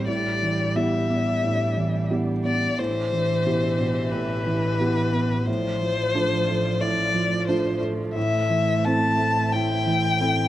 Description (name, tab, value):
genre	neoclassical piano and strings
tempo	89 BPM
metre	4/4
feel	rubato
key	unclear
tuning	A4 = 440 Hz
part	warm violin	melody	0.0-10.5 s	B4 to A5	-25 LUFS	left 4 dB	slapback echo
part	clear cello	second line	0.0-10.5 s	E3 to A3	-32 LUFS	right 6 dB	none
part	felt-muted upright piano	accompaniment	0.0-10.5 s	A2 to G4	-25 LUFS	right 2 dB	none
part	rich chamber string section	sustained chords	0.0-10.5 s	A3 to E5	-37 LUFS	right 1 dB	none
part	rich double bass	bass	0.0-10.5 s	A1	-29 LUFS	equal	none
room	light reverb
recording	recorded outdoors, with no room sound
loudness	-21 LUFS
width	side -13 dB against mid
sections	0.0-10.5 A section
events	none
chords	0.1 Em7/A; 5.5 Dm7/A; 8.2 Am7